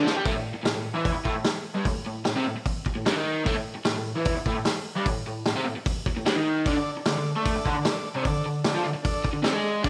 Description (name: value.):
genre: garage rock duo or trio.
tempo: 150 BPM.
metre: 4/4.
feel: straight.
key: unclear.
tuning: A4 = 441 Hz.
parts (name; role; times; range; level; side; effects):
combo organ; sustained chords; 0.0-0.1, 6.7-9.9 s; D4 to D5; -36 LUFS; equal; none.
crunchy overdriven guitar; riff; 0.0-9.9 s; G2 to A4; -29 LUFS; equal; phaser.
vintage drum kit; drums; 0.1-9.9 s; hi-hat, kick drum, snare drum; -30 LUFS; equal; none.
room: light reverb, small room ambience.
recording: none.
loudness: -27 LUFS.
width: mono.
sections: 0.2-9.9 A section.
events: drum fill 0.0.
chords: 0.2 N.C.; 6.7 D5.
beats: | 0.25 0.65 1.04 1.45 | 1.85 2.25 2.65 3.05 | 3.45 3.85 4.25 4.65 | 5.05 5.45 5.85 6.25 | 6.65 7.05 7.45 7.85 | 8.25 8.65 9.04 9.44 | 9.84.